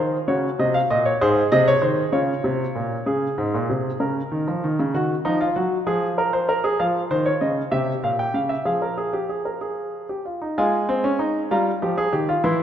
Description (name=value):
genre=classical, baroque-style 3-part fugue for grand piano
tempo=64 BPM (dotted quarters)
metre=6/8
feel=straight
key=Db major, F minor from 6.8 s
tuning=A4 = 440 Hz
part: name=warm grand piano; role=solo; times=0.0-12.6 s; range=Ab2 to C6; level=-20 LUFS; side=equal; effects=none
room=moderate concert hall reverb, RT60 2.3 s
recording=minimal, uncompressed stereo recording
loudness=-20 LUFS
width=side -9 dB against mid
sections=0.0-3.1 A section; 3.1-10.6 B section; 10.6-12.6 C section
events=none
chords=0.3 Ebm7; 1.2 Ab; 2.1 Db; 3.1 Db5; 4.0 Db69; 4.9 Ebmadd9; 5.9 Fm; 6.8 F5; 7.7 C7; 8.7 Fm; 10.6 Fm/Ab; 11.5 Ebadd9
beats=0.28 | 1.21 2.14 | 3.07 4.01 | 4.94 5.87 | 6.79 7.72 | 8.65 9.61 | 10.56 11.50 | 12.43